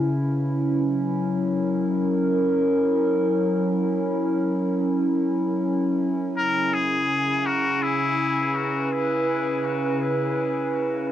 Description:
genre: ambient dub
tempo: free time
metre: none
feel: none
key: C# dorian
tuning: A4 = 440 Hz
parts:
  - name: warbly tape-like pad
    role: sustained chords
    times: 0.0-11.1 s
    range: C#3 to B4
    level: -22 LUFS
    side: equal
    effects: chorus, built-in reverb
  - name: trumpet with straight mute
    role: melody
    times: 6.4-8.9 s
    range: E4 to A#4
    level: -24 LUFS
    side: left 3 dB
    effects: cassette tape, dub echo
room: wet booth ambience, RT60 0.2 s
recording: home recording on cassette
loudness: -21 LUFS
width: side -11 dB against mid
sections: 0.0-11.1 A section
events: none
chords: 0.0 C#m7; 0.6 F#7; 6.4 C#m7

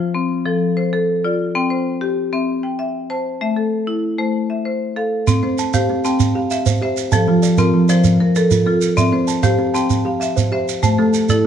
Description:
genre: southern african traditional, mbira-style interlocking cycle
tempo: 129 BPM (dotted quarters)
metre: 12/8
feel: straight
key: C mixolydian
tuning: A4 = 440 Hz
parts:
  - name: marimba with hard mallets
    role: arpeggios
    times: 0.0-11.5 s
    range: F3 to A5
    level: -18 LUFS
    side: left 3 dB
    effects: none
  - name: shekere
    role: percussion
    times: 5.3-11.4 s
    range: none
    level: -19 LUFS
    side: right 5 dB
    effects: none
  - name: kalimba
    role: arpeggios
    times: 5.4-11.5 s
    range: F3 to A5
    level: -19 LUFS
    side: right 4 dB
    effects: none
room: moderate recital hall reverb, RT60 1.6 s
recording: none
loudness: -15 LUFS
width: side -8 dB against mid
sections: 0.0-5.3 A section; 5.3-11.5 A section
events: none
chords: 0.0 F; 1.5 C; 3.4 Am; 5.3 C; 7.1 F; 9.0 C; 10.8 Am

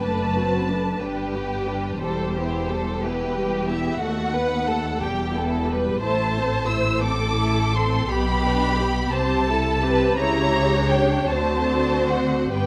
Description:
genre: classical, slow romantic movement for string orchestra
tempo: 45-62 BPM (dotted quarters)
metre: 6/8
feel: rubato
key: unclear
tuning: A4 = 440 Hz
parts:
  - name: warm studio violin section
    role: melody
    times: 0.0-12.7 s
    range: B4 to E6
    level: -30 LUFS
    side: equal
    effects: none
  - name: rich studio violin section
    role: second line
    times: 0.0-12.7 s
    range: F#4 to C#5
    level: -29 LUFS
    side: equal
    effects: none
  - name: warm studio viola section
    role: accompaniment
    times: 0.0-12.7 s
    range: G3 to B4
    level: -28 LUFS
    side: equal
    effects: none
  - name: warm studio cello section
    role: bass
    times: 0.0-12.7 s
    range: D#2 to D3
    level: -30 LUFS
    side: equal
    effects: none
  - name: warm studio double bass section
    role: bass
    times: 0.0-12.7 s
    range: E1 to D#2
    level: -30 LUFS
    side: equal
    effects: none
room: moderate scoring stage reverb, RT60 1.9 s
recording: none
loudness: -22 LUFS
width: mono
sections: 0.0-12.7 A section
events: none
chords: 0.0 D7/F#; 1.0 G; 2.0 Em; 4.0 B7/D#; 5.0 Em; 6.0 Am; 8.1 G/B; 9.1 Am7/C; 10.2 C#dim7; 11.3 D7

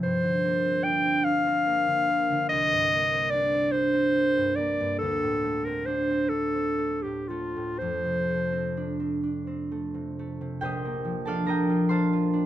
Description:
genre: classical, impressionist duo for clarinet and harp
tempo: 39-49 BPM (dotted quarters)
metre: 6/8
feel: rubato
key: Bb major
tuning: A4 = 440 Hz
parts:
  - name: clear clarinet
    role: melody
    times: 0.0-9.2 s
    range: F4 to G5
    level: -25 LUFS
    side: left 1 dB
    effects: none
  - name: concert harp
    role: accompaniment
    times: 0.0-12.5 s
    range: Bb1 to C6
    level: -27 LUFS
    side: right 1 dB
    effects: none
room: light reverb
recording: close, detailed microphones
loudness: -24 LUFS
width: side -12 dB against mid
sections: 0.0-10.6 A section; 10.6-12.5 B section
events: none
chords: 0.0 Gm7; 2.5 Cm9; 5.0 D5; 7.8 F6; 10.6 Bb6

